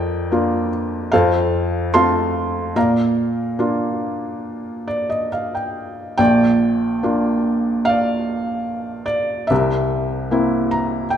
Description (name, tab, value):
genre	classical, lyrical solo piano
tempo	66-75 BPM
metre	4/4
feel	rubato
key	Bb major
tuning	A4 = 440 Hz
part	felt-muted upright piano	solo	0.0-11.2 s	Bb1 to C6	-17 LUFS	equal	none
room	moderate concert hall reverb, RT60 1.7 s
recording	minimal, uncompressed stereo recording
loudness	-17 LUFS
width	side -9 dB against mid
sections	0.0-6.2 A section; 6.2-11.2 A section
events	felt piano fill 4.4-6.2, 10.3-11.2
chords	0.0 Bb/F; 1.1 F; 2.8 Bb; 9.5 C7